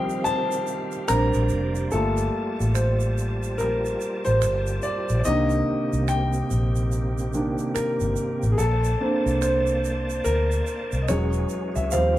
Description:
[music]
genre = R&B, neo-soul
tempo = 72 BPM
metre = 4/4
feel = swing 61% on 16ths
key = unclear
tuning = A4 = 438 Hz
[part]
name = warm upright piano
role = accompaniment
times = 0.0-12.2 s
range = D3 to Bb5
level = -24 LUFS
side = equal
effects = none
[part]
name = bright tonewheel organ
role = sustained chords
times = 0.0-12.2 s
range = C3 to A5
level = -32 LUFS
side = right 2 dB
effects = chorus vibrato, fast rotary speaker
[part]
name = tube shaker and finger snaps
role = percussion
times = 0.1-12.2 s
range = none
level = -37 LUFS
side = right 9 dB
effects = none
[part]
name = vintage muted fingered electric bass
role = bass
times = 1.1-12.2 s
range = E1 to Eb2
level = -24 LUFS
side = equal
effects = none
[sound]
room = moderate large studio reverb, RT60 0.9 s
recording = band playing live in one room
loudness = -21 LUFS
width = side -14 dB against mid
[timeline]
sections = 0.0-1.9 A section; 1.9-12.2 B section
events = upright piano solo 0.0-1.9, 1.9-12.2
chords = 0.0 Eb69; 1.1 Bb69; 1.9 Gm9; 5.3 Cm9; 8.6 Bbmaj9; 11.1 E69

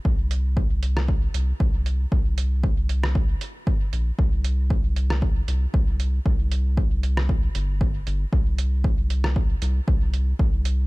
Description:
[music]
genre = dub techno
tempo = 116 BPM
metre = 4/4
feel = swing 54% on 16ths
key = unclear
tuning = A4 = 439 Hz
[part]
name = round analog bass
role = bass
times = 0.1-10.9 s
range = G1 to C2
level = -23 LUFS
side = equal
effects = sidechain pumping
[part]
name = electronic kick drum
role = drums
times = 0.1-10.5 s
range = none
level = -22 LUFS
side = equal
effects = none
[part]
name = lo-fi sampler-style drum kit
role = drums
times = 0.3-10.8 s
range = hi-hat, rim click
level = -34 LUFS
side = right 1 dB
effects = overdrive, dub echo
[sound]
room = little or no reverb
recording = dark, warm production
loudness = -20 LUFS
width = side -22 dB against mid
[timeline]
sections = 0.0-10.9 A section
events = none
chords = none

